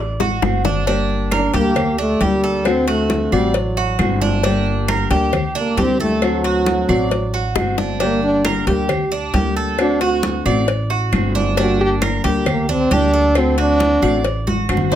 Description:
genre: latin, Cuban son and guajira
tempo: 134 BPM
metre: 4/4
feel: straight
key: G harmonic minor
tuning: A4 = 435 Hz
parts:
  - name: Cuban tres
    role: arpeggios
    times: 0.0-15.0 s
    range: D4 to D5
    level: -22 LUFS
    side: right 4 dB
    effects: none
  - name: upright bass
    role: bass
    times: 0.0-15.0 s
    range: G1 to D2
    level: -22 LUFS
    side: right 1 dB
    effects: none
  - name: bongos and cowbell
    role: percussion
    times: 0.2-14.9 s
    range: none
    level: -24 LUFS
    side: left 6 dB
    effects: none
  - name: congas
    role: percussion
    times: 0.2-15.0 s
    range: none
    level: -25 LUFS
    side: left 1 dB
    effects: none
  - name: nylon-string guitar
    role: accompaniment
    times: 0.4-15.0 s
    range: D3 to G4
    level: -21 LUFS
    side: left 4 dB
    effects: none
  - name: claves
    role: percussion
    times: 0.4-14.9 s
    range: none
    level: -29 LUFS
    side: right 7 dB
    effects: none
  - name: warm French horn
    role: melody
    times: 1.3-15.0 s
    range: F#3 to G4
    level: -18 LUFS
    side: right 1 dB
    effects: none
  - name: dark studio violin section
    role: second line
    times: 14.9-15.0 s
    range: C5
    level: -18 LUFS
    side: left 6 dB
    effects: none
room: light reverb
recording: close, detailed microphones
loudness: -15 LUFS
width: side -10 dB against mid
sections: 0.9-15.0 A section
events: drum fill 0.2-0.9, 7.6-8.0, 14.5-15.0; French horn solo 0.9-15.0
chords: 0.0 D7; 0.9 Gm; 2.7 D7; 4.4 Gm; 6.2 D7; 8.0 Gm; 9.8 D7; 11.6 Gm; 13.4 D7

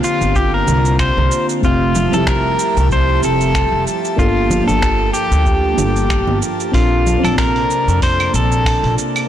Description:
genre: sunset chillout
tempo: 94 BPM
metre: 4/4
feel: swing 56% on 16ths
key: Bb lydian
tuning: A4 = 440 Hz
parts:
  - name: pedal steel guitar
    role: melody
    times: 0.0-8.9 s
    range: F4 to C5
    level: -18 LUFS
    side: left 1 dB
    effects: vintage 12-bit sampler grit, digital delay
  - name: mellow FM electric piano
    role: accompaniment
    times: 0.0-9.3 s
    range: G3 to A5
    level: -22 LUFS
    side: equal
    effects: chorus, phaser, auto-pan, ping-pong delay
  - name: airy breathy pad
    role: sustained chords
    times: 0.0-9.3 s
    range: C3 to A5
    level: -22 LUFS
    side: right 1 dB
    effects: chorus
  - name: dusty soul sampler-style drum kit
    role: drums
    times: 0.0-9.3 s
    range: cabasa, claves, finger snaps, hi-hat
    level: -25 LUFS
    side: right 3 dB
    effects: soft clipping on snare
  - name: upright bass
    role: bass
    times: 0.2-8.9 s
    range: F1 to F2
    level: -18 LUFS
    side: equal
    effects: tube saturation
  - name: electronic kick drum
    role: drums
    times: 0.3-8.8 s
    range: none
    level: -19 LUFS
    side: equal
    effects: none
  - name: congas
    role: percussion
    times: 0.7-7.4 s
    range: none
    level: -24 LUFS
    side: right 2 dB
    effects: none
room: light reverb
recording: blown-out, overdriven recording, overdrive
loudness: -13 LUFS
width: side -11 dB against mid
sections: 0.0-9.3 A section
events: none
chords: 0.0 C9sus4; 1.6 Fmaj9; 4.2 Gm9; 6.7 Bbmaj9

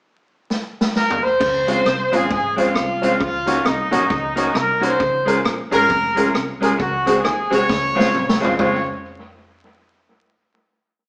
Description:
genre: ska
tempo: 134 BPM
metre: 4/4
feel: swing 60% on 8ths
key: Db major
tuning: A4 = 438 Hz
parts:
  - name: swinging big-band drum kit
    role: drums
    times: 0.5-8.7 s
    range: crash cymbal, hi-hat, kick drum, rim click, snare drum, toms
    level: -26 LUFS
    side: equal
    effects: analog delay
  - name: warm horn section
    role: melody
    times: 1.0-8.8 s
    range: Eb4 to Db5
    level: -22 LUFS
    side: equal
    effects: none
  - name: electric guitar at the edge of break-up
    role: riff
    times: 1.4-8.3 s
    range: F2 to Eb3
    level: -31 LUFS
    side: equal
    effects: none
  - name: upright bass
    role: bass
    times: 1.4-8.8 s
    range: F1 to Eb2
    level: -35 LUFS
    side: equal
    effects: none
  - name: electric guitar at the edge of break-up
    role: accompaniment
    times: 1.7-8.8 s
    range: Ab3 to Gb4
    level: -26 LUFS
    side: equal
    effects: none
  - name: honky-tonk upright piano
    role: stabs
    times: 1.7-8.8 s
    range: C4 to Db5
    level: -24 LUFS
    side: equal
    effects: none
room: wet stone room reverb, RT60 1.1 s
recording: band playing live in one room, vinyl crackle, small speaker sound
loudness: -19 LUFS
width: mono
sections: 0.0-1.4 pickup bar; 1.4-8.6 A section; 8.6-10.4 final chord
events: drum fill 0.5-1.4, 7.7-8.6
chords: 0.0 N.C.; 1.4 Dbmaj7; 3.2 Ebm7; 5.0 Bbm7; 6.8 Ab7/Db; 7.7 Dbmaj7

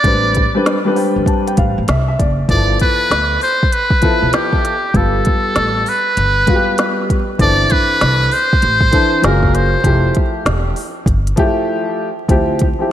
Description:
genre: hip hop, jazz-hop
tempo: 98 BPM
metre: 4/4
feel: swing 66% on 16ths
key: unclear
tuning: A4 = 438 Hz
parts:
  - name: trumpet with metal mute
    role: melody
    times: 0.0-10.2 s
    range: G4 to D5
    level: -16 LUFS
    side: equal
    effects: slapback echo
  - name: warm upright piano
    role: accompaniment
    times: 0.0-12.9 s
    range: E3 to A5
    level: -18 LUFS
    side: left 2 dB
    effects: slapback echo
  - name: upright bass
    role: bass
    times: 0.0-12.7 s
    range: E1 to D2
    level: -18 LUFS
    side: equal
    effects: none
  - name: organic electronic drum kit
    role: drums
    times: 0.0-12.8 s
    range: hi-hat, kick drum, snare drum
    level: -17 LUFS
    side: equal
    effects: none
room: moderate lush hall reverb, RT60 2.7 s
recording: big arena sound, vinyl crackle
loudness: -12 LUFS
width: side -11 dB against mid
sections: 0.0-2.5 A section; 2.5-12.3 B section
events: upright piano fill 0.7-2.5; break 11.7-12.3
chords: 0.0 Am11; 2.5 G13; 4.9 G9; 7.4 C69/G; 9.2 F#maj9; 9.8 Fmaj9; 12.3 Dm11

